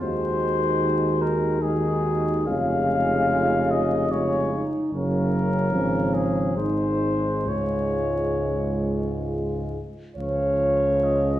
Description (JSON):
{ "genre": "classical, hymn-like piece for brass band", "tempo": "64-76 BPM", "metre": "3/4", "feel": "rubato", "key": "Db major", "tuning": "A4 = 440 Hz", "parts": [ { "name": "dark cornet", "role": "melody", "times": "0.0-11.4 s", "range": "Ab4 to F5", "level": "-27 LUFS", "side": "left 3 dB", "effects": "none" }, { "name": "warm French horn section", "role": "second line", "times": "0.0-11.4 s", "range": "Db4 to Db5", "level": "-27 LUFS", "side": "right 2 dB", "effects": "none" }, { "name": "clear trombone", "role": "accompaniment", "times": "0.0-11.4 s", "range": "Ab2 to F3", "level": "-30 LUFS", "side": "right 1 dB", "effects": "none" }, { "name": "warm euphonium", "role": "accompaniment", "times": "0.0-11.4 s", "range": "F3 to Db4", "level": "-29 LUFS", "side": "left 1 dB", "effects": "none" }, { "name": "mellow tuba", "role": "bass", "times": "0.0-11.4 s", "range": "F1 to Eb2", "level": "-27 LUFS", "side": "equal", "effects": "none" } ], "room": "wet recital hall reverb, RT60 1.7 s", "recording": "heard from further back in the room, vinyl crackle", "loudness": "-21 LUFS", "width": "side -13 dB against mid", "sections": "0.0-10.2 A section; 10.2-11.4 A section", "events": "none", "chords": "0.0 Ab7/Eb; 2.5 Db/F; 4.9 Gb; 5.7 Db/Ab; 6.6 Ab; 7.5 Db", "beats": "| 0.02 0.82 1.62 | 2.48 3.32 4.12 | 4.93 5.73 6.58 | 7.48 8.40 9.28 | 10.18 11.04" }